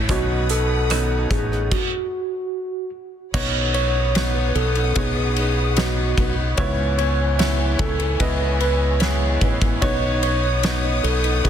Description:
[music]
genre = pop ballad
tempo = 74 BPM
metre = 4/4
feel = straight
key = unclear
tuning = A4 = 440 Hz
[part]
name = clear upright piano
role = accompaniment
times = 0.0-11.5 s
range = G#2 to D#5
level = -27 LUFS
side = right 1 dB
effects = none
[part]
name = dark studio string section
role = sustained chords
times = 0.0-11.5 s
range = C#5 to D#6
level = -30 LUFS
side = left 2 dB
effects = none
[part]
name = nylon-string guitar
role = arpeggios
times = 0.0-11.5 s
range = B2 to B4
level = -33 LUFS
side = equal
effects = tape echo
[part]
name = fingered electric bass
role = bass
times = 0.0-11.5 s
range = A1 to C#2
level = -22 LUFS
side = equal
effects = none
[part]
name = noise sweep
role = sound effects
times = 0.0-1.7 s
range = none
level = -35 LUFS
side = equal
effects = none
[part]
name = mellow tine electric piano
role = melody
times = 0.1-11.5 s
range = F#4 to C#5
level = -25 LUFS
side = right 1 dB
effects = medium stereo tremolo
[part]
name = loose indie drum kit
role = drums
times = 0.1-11.5 s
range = crash cymbal, hi-hat, kick drum, ride cymbal, rim click, snare drum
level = -24 LUFS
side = equal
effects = none
[sound]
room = light reverb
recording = dense, heavily limited modern master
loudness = -18 LUFS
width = side -9 dB against mid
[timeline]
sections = 0.0-3.3 A section; 3.3-11.5 B section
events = stop 1.7-3.3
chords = 0.1 Badd9; 6.6 C#m7; 9.8 Badd9

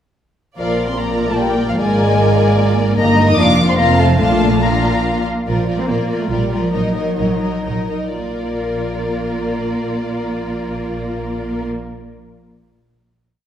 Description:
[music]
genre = quick classical-period movement for symphony orchestra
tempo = 115-155 BPM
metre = 3/4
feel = rubato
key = Bb major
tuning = A4 = 439 Hz
[part]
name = dark chamber violin section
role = melody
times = 0.6-11.7 s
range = D5 to Eb6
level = -24 LUFS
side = left 2 dB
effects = none
[part]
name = rich symphonic violin section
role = second line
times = 0.6-11.7 s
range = F4 to F5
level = -22 LUFS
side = left 2 dB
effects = none
[part]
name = warm chamber viola section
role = accompaniment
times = 0.6-11.7 s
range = Bb3 to F4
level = -23 LUFS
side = right 1 dB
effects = none
[part]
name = mellow French horn section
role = sustained chords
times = 0.6-5.2 s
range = F3 to Eb4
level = -20 LUFS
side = left 2 dB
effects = none
[part]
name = rich chamber double bass section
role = bass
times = 0.6-11.7 s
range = F1 to Bb1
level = -22 LUFS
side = right 2 dB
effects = none
[part]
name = warm chamber cello section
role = bass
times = 0.6-11.7 s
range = F2 to C4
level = -21 LUFS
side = right 1 dB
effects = none
[sound]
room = wet scoring stage reverb, RT60 1.7 s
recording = recorded in a church or concert hall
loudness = -15 LUFS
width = side -10 dB against mid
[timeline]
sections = 0.6-5.5 A section; 5.5-8.2 coda; 8.2-11.1 final chord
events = slowing down 4.8-8.2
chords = 0.6 Bb; 1.8 Bb7/Ab; 3.0 Eb/G; 3.4 Bb/F; 3.8 F; 4.2 Bb; 6.7 Ebm/Bb; 8.2 Bb

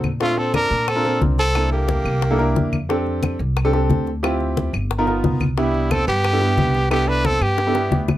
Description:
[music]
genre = Afro-Cuban jazz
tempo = 179 BPM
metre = 4/4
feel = straight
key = C major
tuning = A4 = 439 Hz
[part]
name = clear grand piano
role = accompaniment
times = 0.0-8.1 s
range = Bb3 to Bb4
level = -23 LUFS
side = right 1 dB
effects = none
[part]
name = upright bass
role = bass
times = 0.0-8.2 s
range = G1 to Bb2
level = -22 LUFS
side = equal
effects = none
[part]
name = bongos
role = percussion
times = 0.0-8.2 s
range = none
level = -28 LUFS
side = left 7 dB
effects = none
[part]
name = claves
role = percussion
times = 0.0-8.2 s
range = none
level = -32 LUFS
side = left 2 dB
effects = none
[part]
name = congas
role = percussion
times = 0.0-8.2 s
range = none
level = -23 LUFS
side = left 2 dB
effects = none
[part]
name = clear trumpet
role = melody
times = 0.2-2.7, 5.6-8.1 s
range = E4 to B4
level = -21 LUFS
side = equal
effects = none
[part]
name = growling tenor saxophone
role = second line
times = 0.2-2.7, 5.6-8.1 s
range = G3 to D4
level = -27 LUFS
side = right 4 dB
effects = none
[sound]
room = little or no reverb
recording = close, detailed microphones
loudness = -17 LUFS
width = side -14 dB against mid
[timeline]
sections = 0.0-8.2 A section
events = drum fill 7.6-8.2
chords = 0.2 Bbmaj9; 1.6 C13; 2.9 F69; 4.2 Dm11; 4.9 G7alt; 5.6 Cmaj9

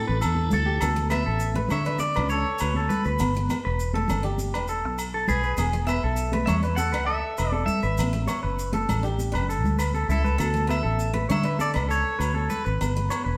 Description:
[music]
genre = highlife guitar band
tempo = 100 BPM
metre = 4/4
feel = straight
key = D major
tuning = A4 = 441 Hz
[part]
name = electric guitar at the edge of break-up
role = melody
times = 0.0-13.4 s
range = G#4 to F#5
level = -32 LUFS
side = equal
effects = none
[part]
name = tonewheel organ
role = sustained chords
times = 0.0-0.8 s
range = D4 to A4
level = -39 LUFS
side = equal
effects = slow rotary speaker, chorus vibrato
[part]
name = clean electric guitar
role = arpeggios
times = 0.0-13.4 s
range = E4 to C#5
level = -32 LUFS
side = equal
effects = none
[part]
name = fingered electric bass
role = bass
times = 0.0-13.4 s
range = E1 to D3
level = -28 LUFS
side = equal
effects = none
[part]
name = agogo bells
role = percussion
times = 0.2-13.3 s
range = none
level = -38 LUFS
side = equal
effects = none
[part]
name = maracas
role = percussion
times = 0.2-13.2 s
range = none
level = -45 LUFS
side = equal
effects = none
[part]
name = congas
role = percussion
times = 0.4-13.2 s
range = none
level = -34 LUFS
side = equal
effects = none
[part]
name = picked steel-string acoustic guitar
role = accompaniment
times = 0.8-13.4 s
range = A3 to D4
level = -35 LUFS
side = equal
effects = none
[sound]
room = wet stone room reverb, RT60 1.3 s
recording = band playing live in one room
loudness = -25 LUFS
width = mono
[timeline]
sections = 0.8-13.4 A section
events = drum fill 9.9-10.4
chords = 0.0 Asus4; 0.8 Dsus2; 3.2 Gadd9; 5.6 E; 8.0 Asus4; 10.4 Dsus2; 12.8 Gadd9

